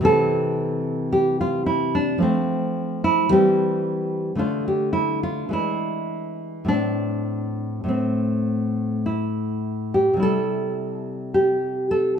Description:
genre	classical, baroque-style dance for nylon-string guitar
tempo	49-56 BPM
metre	3/4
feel	rubato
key	unclear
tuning	A4 = 436 Hz
part	nylon-string guitar	solo	0.0-12.2 s	A2 to A4	-20 LUFS	equal	none
room	moderate recital hall reverb, RT60 1.6 s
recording	minimal, uncompressed stereo recording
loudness	-20 LUFS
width	side -7 dB against mid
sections	0.0-10.2 A section; 10.2-12.2 A section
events	none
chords	0.0 C; 2.2 F; 3.3 C/E; 4.4 D5; 5.5 E7; 6.7 Am; 10.2 C

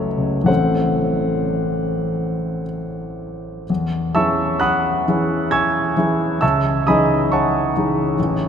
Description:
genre	classical, impressionist solo piano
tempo	48-72 BPM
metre	3/4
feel	rubato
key	E major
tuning	A4 = 441 Hz
part	warm concert grand piano	solo	0.0-8.5 s	F#1 to G#6	-17 LUFS	equal	none
room	wet cathedral reverb, RT60 7.0 s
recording	in a vast, echoing space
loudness	-16 LUFS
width	side -8 dB against mid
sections	0.0-3.7 A section; 3.7-8.5 B section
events	none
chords	0.5 Am6; 3.7 E6; 6.4 C#madd9

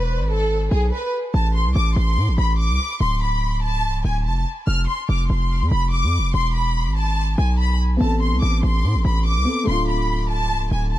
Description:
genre	hip hop, drill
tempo	144 BPM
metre	4/4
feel	half-time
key	A harmonic minor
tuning	A4 = 438 Hz
part	warm studio violin section	melody	0.0-11.0 s	G#4 to F6	-24 LUFS	left 1 dB	digital delay
part	distorted 808-style bass	bass	0.0-11.0 s	C1 to A2	-19 LUFS	equal	distortion
part	dark baby grand piano	accompaniment	8.0-11.0 s	A3 to A4	-25 LUFS	left 1 dB	none
room	small room ambience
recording	dark, warm production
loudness	-18 LUFS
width	side -14 dB against mid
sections	0.0-1.3 A section; 1.3-11.0 B section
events	break 0.9-1.3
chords	0.0 E; 1.3 Am; 3.0 D5; 4.7 F5; 6.3 E; 8.0 Amadd9; 9.7 Dm

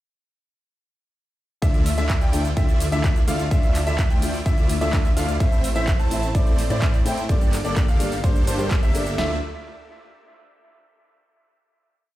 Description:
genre	EDM, festival progressive house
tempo	127 BPM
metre	4/4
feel	straight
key	D minor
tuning	A4 = 441 Hz
part	felt-muted upright piano	accompaniment	1.6-9.4 s	G2 to E5	-29 LUFS	left 2 dB	sidechain pumping, dub echo
part	clear grand piano	arpeggios	1.6-9.4 s	C5 to A5	-31 LUFS	right 1 dB	sidechain pumping, dub echo
part	supersaw chords	riff	1.6-9.4 s	A3 to A5	-28 LUFS	right 1 dB	wide subtle chorus, sidechain pumping, dub echo
part	wide detuned saw bass	bass	1.6-9.4 s	G1 to A2	-26 LUFS	equal	chorus, sidechain pumping
part	big-room dance drum kit	drums	1.6-9.3 s	kick drum, snare drum	-19 LUFS	equal	none
part	big-room dance drum kit	drums	1.6-9.2 s	handclaps, hi-hat, ride cymbal, shaker	-32 LUFS	equal	none
room	little or no reverb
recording	played on a big sound system in a bare room, large studio reverb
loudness	-18 LUFS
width	side -15 dB against mid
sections	1.6-9.2 drop; 9.2-11.1 final chord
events	drop 1.6-9.2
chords	1.6 Dmadd9; 5.4 Am; 7.3 Gmadd9; 9.2 Dmadd9

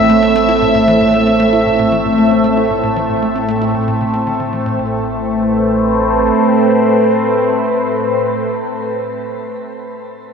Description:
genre	ambient, sequencer-driven space music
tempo	115 BPM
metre	4/4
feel	straight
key	A minor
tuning	A4 = 442 Hz
part	evolving wavetable pad	sustained chords	0.0-9.7 s	A2 to E5	-12 LUFS	equal	phaser, built-in reverb, shimmer reverb
part	warm sub bass	bass	0.0-6.3 s	A1	-31 LUFS	equal	none
part	tight sequencer bass	riff	0.1-5.0 s	A2 to E4	-24 LUFS	left 1 dB	lush chorus, tape echo, shimmer reverb
room	wet huge ambient reverb, RT60 8.2 s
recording	none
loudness	-12 LUFS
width	side -6 dB against mid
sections	0.0-4.8 A section; 4.8-9.0 B section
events	fade-out on analog synth bass 0.0-4.8; fade-out on sub bass 0.0-4.8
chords	0.0 Am; 4.8 Amadd9

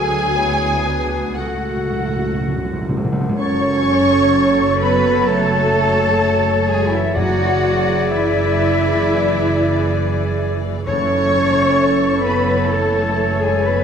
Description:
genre	cinematic, emotional film score for orchestra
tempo	58-67 BPM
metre	4/4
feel	rubato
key	F# minor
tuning	A4 = 441 Hz
part	muted studio violin section	melody	0.0-13.8 s	C#5 to G#5	-26 LUFS	left 4 dB	none
part	clear oboe	second line	0.0-13.8 s	F#4 to A5	-28 LUFS	equal	none
part	muted studio violin section	second line	0.0-13.8 s	F#4 to C#6	-28 LUFS	left 4 dB	none
part	warm clarinet	second line	0.0-13.8 s	A4 to D5	-25 LUFS	left 2 dB	none
part	muted studio viola section	accompaniment	0.0-13.8 s	E3 to A4	-25 LUFS	equal	none
part	mellow French horn section	sustained chords	0.0-13.8 s	E3 to F#4	-21 LUFS	left 1 dB	none
part	muted studio cello section	bass	0.0-13.8 s	C#2 to C#5	-22 LUFS	right 2 dB	none
part	muted studio double bass section	bass	0.0-13.8 s	F#1 to D2	-22 LUFS	right 4 dB	none
part	timpani	percussion	1.4-12.2 s	F#2 to C#3	-24 LUFS	left 1 dB	none
part	flute section	second line	3.4-13.8 s	E5 to C#6	-25 LUFS	left 1 dB	none
room	moderate scoring stage reverb, RT60 1.6 s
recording	none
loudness	-14 LUFS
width	side -7 dB against mid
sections	0.0-3.4 A section; 3.4-13.8 B section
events	timpani fill 1.4-3.4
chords	0.0 D; 1.4 F#m/C#; 3.4 F#m; 7.2 E7/F#; 10.9 A6/F#

